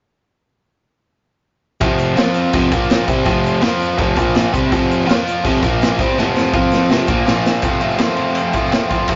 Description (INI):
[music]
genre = garage rock duo or trio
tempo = 165 BPM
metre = 4/4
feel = straight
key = F major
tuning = A4 = 440 Hz
[part]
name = biting overdriven guitar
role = riff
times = 1.8-9.2 s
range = F2 to F4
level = -18 LUFS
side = equal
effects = none
[part]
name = raw garage drum kit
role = drums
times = 1.8-9.2 s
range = crash cymbal, kick drum, ride cymbal, snare drum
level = -20 LUFS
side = equal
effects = none
[part]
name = tube shaker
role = percussion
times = 1.8-9.2 s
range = none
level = -47 LUFS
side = equal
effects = none
[sound]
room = moderate studio ambience, RT60 0.5 s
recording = rough rehearsal-room recording, nothing above 7.5 kHz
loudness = -16 LUFS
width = mono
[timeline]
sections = 1.8-7.6 A section; 7.6-9.2 B section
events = drum fill 6.2-7.6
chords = 1.8 F5; 2.7 Bb5; 3.1 F5; 4.2 Bb5; 4.5 F5; 5.6 Bb5; 6.0 F5; 7.3 Bb5; 7.6 F